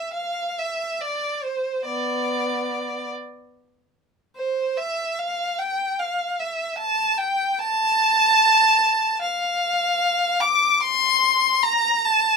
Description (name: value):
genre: classical, free, expressive piece for unaccompanied violin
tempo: 73 BPM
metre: 3/4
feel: rubato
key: A minor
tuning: A4 = 441 Hz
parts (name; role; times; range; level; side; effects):
- rich violin; solo; 0.0-12.4 s; B3 to D6; -19 LUFS; equal; none
room: light reverb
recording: none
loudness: -19 LUFS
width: side -4 dB against mid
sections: 0.0-12.4 A section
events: none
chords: none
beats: 0.14 1.00 | 1.85 2.71 3.54 | 4.36 5.19 6.00 | 6.79 7.60 8.41 | 9.21 10.01 10.83 | 11.65